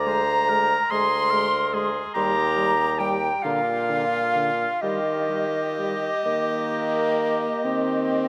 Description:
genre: classical, slow romantic movement for wind quintet.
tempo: 42-49 BPM (dotted quarters).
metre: 12/8.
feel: rubato.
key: Eb major.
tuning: A4 = 441 Hz.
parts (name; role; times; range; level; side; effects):
hollow concert flute; melody; 0.0-8.3 s; Eb5 to C6; -33 LUFS; equal; none.
warm oboe; second line; 0.0-8.3 s; F4 to C5; -32 LUFS; equal; none.
mellow clarinet; accompaniment; 0.0-8.3 s; Eb5 to C6; -27 LUFS; equal; none.
mellow bassoon; bass; 0.0-8.3 s; D2 to Eb3; -30 LUFS; equal; none.
clear French horn; accompaniment; 0.1-8.3 s; D3 to C4; -32 LUFS; equal; none.
room: wet cathedral reverb, RT60 4.8 s.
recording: in a vast, echoing space.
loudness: -23 LUFS.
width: mono.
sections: 0.0-8.3 A section.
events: none.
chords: 0.0 Bb7/D; 2.2 Eb; 3.5 Bb; 4.8 Eb.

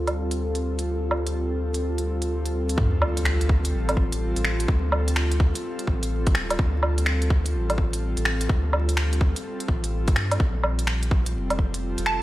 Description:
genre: future garage.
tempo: 126 BPM.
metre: 4/4.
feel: swing 65% on 16ths.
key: D minor.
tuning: A4 = 440 Hz.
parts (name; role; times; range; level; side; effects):
airy breathy pad; sustained chords; 0.0-12.2 s; G3 to A4; -30 LUFS; equal; chorus, sidechain pumping.
warm sub bass; bass; 0.0-12.2 s; D1 to G2; -25 LUFS; equal; sidechain pumping.
organic electronic drum kit; drums; 0.1-12.2 s; finger snaps, hi-hat, woodblock; -27 LUFS; equal; studio reverb.
electronic kick drum; drums; 2.8-11.7 s; none; -23 LUFS; equal; studio reverb.
sub drop; sound effects; 2.8-4.7 s; none; -31 LUFS; equal; none.
hollow square pluck; melody; 12.1-12.2 s; A5; -22 LUFS; right 3 dB; ensemble chorus.
room: light reverb.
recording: vinyl crackle.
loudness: -22 LUFS.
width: side -16 dB against mid.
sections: 0.0-2.8 A section; 2.8-12.2 B section.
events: filter sweep on drum 0.0-2.8; filter sweep on analog synth pad 0.0-2.8; impact 2.8-4.7.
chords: 0.0 Dm7; 10.4 Bbsus2.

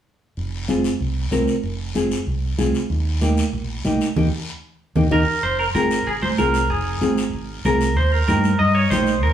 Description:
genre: latin, cumbia.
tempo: 190 BPM.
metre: 4/4.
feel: straight.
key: F minor.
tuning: A4 = 440 Hz.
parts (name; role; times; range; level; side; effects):
deep dub fingered electric bass; bass; 0.4-9.3 s; F1 to G2; -23 LUFS; right 1 dB; none.
guiro; percussion; 0.4-9.3 s; none; -34 LUFS; left 4 dB; none.
nylon-string guitar; accompaniment; 0.7-9.1 s; Bb3 to Bb4; -22 LUFS; left 2 dB; none.
congas; percussion; 0.7-9.1 s; none; -24 LUFS; right 4 dB; none.
clean electric guitar; melody; 5.1-9.3 s; Ab4 to Eb5; -21 LUFS; right 1 dB; spring reverb.
room: wet studio reverb, RT60 0.6 s.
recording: heard from further back in the room, studio reverb.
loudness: -18 LUFS.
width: side -10 dB against mid.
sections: 0.4-5.4 A section; 5.4-9.3 B section.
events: band accent 4.2-5.4; drum fill 4.8-5.4; nylon-string guitar fill 5.0-5.4.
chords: 0.4 Fm; 2.9 Eb; 5.4 Fm; 8.0 Eb.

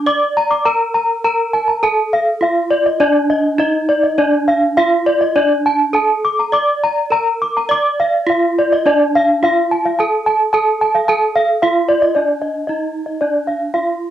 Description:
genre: gamelan.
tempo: 102-114 BPM.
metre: 4/4.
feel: straight.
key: D pelog.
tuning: A4 = 440 Hz.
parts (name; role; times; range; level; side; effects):
gamelan-type bronze metallophone; melody; 0.0-14.1 s; D4 to D5; -18 LUFS; right 2 dB; cassette tape.
gamelan-type bronze metallophone; arpeggios; 0.1-13.9 s; D5 to D6; -14 LUFS; equal; none.
room: wet studio reverb, RT60 0.5 s.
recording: home recording on cassette.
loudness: -13 LUFS.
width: side -11 dB against mid.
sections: 0.0-12.2 A section; 12.2-14.1 B section.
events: none.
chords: none.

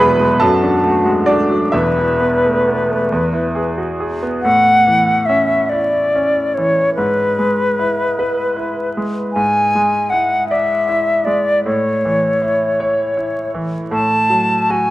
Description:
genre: classical, romantic duo for flute and grand piano.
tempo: 42-55 BPM (dotted quarters).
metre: 6/8.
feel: rubato.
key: A major.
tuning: A4 = 440 Hz.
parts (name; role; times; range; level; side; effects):
bright concert flute; melody; 0.0-14.9 s; F#4 to A5; -15 LUFS; left 1 dB; none.
bright concert grand piano; accompaniment; 0.0-14.9 s; E1 to B5; -17 LUFS; right 1 dB; none.
room: moderate concert hall reverb, RT60 2.3 s.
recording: close, detailed microphones, vinyl crackle.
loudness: -13 LUFS.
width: side -16 dB against mid.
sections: 0.0-4.4 A section; 4.4-14.9 B section.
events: none.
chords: 0.4 D/F#; 1.7 Esus4; 3.1 E; 4.4 A; 7.0 E/G#; 9.3 E7/G#; 11.7 A; 13.9 D/A (rootless).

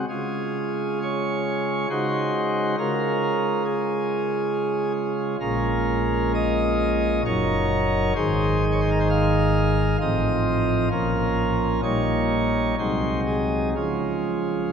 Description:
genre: classical, chorale-style piece for pipe organ.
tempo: 60-69 BPM.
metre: 3/4.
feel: rubato.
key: Db major.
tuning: A4 = 441 Hz.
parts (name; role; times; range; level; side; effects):
pipe organ, sparkling flutes; solo; 0.0-14.7 s; Gb1 to F5; -21 LUFS; equal; none.
room: wet church reverb, RT60 3.5 s.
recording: none.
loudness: -21 LUFS.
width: side -7 dB against mid.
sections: 0.0-14.7 A section.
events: none.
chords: 0.1 Db; 1.9 Ab7/Db; 2.8 Db; 5.4 Bbm7; 7.3 Ebm/Gb; 8.2 Ab5; 10.0 F7/A; 10.9 Bbm; 11.8 Eb7/Bb; 12.8 Ab7/C; 13.8 Db.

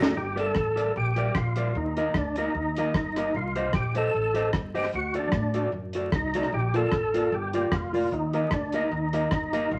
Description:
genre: ska.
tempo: 151 BPM.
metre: 4/4.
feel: swing 55% on 8ths.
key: G minor.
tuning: A4 = 439 Hz.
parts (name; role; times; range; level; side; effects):
percussive tonewheel organ; melody; 0.0-9.8 s; D4 to A4; -31 LUFS; equal; overdrive, fast rotary speaker.
mellow electric guitar; accompaniment; 0.0-9.7 s; F4 to Eb5; -32 LUFS; equal; none.
upright bass; bass; 0.0-9.8 s; F1 to A2; -34 LUFS; equal; none.
deep reggae drum kit; drums; 0.0-9.6 s; hi-hat, kick drum, rim click, snare drum; -31 LUFS; equal; vintage 12-bit sampler grit.
room: wet studio reverb, RT60 0.8 s.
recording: vinyl crackle.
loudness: -27 LUFS.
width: mono.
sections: 0.2-9.8 A section.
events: drum fill 0.0.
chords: 0.2 Gm; 1.8 Eb; 3.3 Cm; 4.9 D; 6.5 Bb; 8.1 Eb.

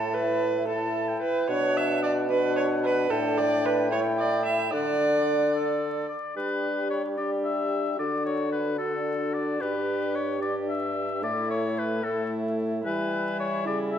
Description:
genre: classical, renaissance-style consort dance.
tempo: 74 BPM (dotted quarters).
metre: 6/8.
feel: straight.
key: D major.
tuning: A4 = 444 Hz.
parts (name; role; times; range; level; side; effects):
warm oboe; melody; 0.0-14.0 s; A4 to A5; -32 LUFS; left 3 dB; none.
warm viola; second line; 0.0-14.0 s; E4 to E5; -29 LUFS; right 3 dB; none.
clear trombone; accompaniment; 0.0-14.0 s; G3 to E4; -30 LUFS; left 2 dB; none.
mellow bassoon; bass; 0.0-14.0 s; G2 to G3; -30 LUFS; equal; none.
room: moderate recital hall reverb, RT60 1.3 s.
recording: dark, warm production, vinyl crackle.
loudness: -24 LUFS.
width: side -9 dB against mid.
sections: 0.0-6.4 A section; 6.4-14.0 B section.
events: none.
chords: 0.0 A5; 1.5 Bm; 3.1 A7sus4; 3.9 A5; 4.7 D; 6.4 G; 8.0 D; 9.6 G; 11.2 A5; 12.9 Em.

